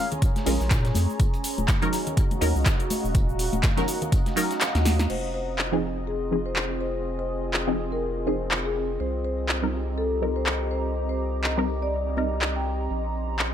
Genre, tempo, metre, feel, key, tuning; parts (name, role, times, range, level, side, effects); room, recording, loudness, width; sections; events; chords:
deep house; 123 BPM; 4/4; swing 57% on 16ths; F minor; A4 = 440 Hz
deep dark ambient pad; sustained chords; 0.0-13.5 s; Db5 to Eb6; -37 LUFS; equal; chorus, built-in reverb, sidechain pumping
filtered dub chord stab; stabs; 0.0-12.9 s; F3 to Bb4; -29 LUFS; equal; phaser, sidechain pumping, ping-pong delay
airy breathy pad; texture; 0.0-13.5 s; C4 to Bb5; -32 LUFS; right 1 dB; chorus, sidechain pumping
deep house drum kit; drums; 0.1-13.5 s; crash cymbal, handclaps, hi-hat, shaker, snare drum; -28 LUFS; equal; overdrive
congas; percussion; 0.1-5.0 s; -34 LUFS; left 4 dB
dusty soul sampler-style drum kit; drums; 0.2-13.5 s; hi-hat, snare drum, tambourine; -40 LUFS; equal
electronic kick drum; drums; 0.2-4.2 s; -23 LUFS; equal
round analog bass; bass; 0.5-13.5 s; Eb1 to Bb2; -28 LUFS; equal; sidechain pumping
marimba with medium mallets; melody; 5.1-12.8 s; Ab4 to G5; -32 LUFS; left 2 dB; tape echo
light reverb; -23 LUFS; side -10 dB against mid
0.0-5.1 A section; 5.1-13.5 B section
filter sweep on synth stab 0.0-5.1, 5.1-13.5; kick drops out 4.6-5.1; drum fill 4.7-5.1
0.0 Bbm7; 1.2 Ebm7; 5.1 Fm7; 9.0 Cm7; 12.9 Bbm7